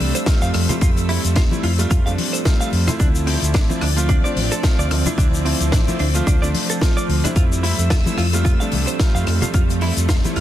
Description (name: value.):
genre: nu-disco, nu disco.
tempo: 110 BPM.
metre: 4/4.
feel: swing 56% on 16ths.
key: unclear.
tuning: A4 = 440 Hz.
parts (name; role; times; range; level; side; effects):
clear concert grand piano; accompaniment; 0.0-10.4 s; F3 to E5; -25 LUFS; right 2 dB; digital delay.
string machine, full ensemble; sustained chords; 0.0-10.4 s; F3 to E6; -26 LUFS; left 1 dB; ensemble chorus, sidechain pumping.
overdriven fingered electric bass; bass; 0.0-10.4 s; F1 to F2; -20 LUFS; equal; none.
tight funk drum kit; drums; 0.0-10.4 s; hi-hat, rim click, shaker, snare drum; -25 LUFS; left 3 dB; none.
congas; percussion; 0.0-10.3 s; none; -25 LUFS; left 3 dB; none.
direct-recorded clean electric guitar; riff; 0.1-10.4 s; C4 to F5; -28 LUFS; right 3 dB; lush chorus, digital delay.
electronic kick drum; drums; 0.3-10.2 s; none; -17 LUFS; equal; none.
room: little or no reverb.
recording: dense, heavily limited modern master.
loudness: -16 LUFS.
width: side -12 dB against mid.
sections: 0.0-10.4 A section.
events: none.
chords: 0.0 Fmaj7; 3.0 Dm7; 7.4 Fmaj7.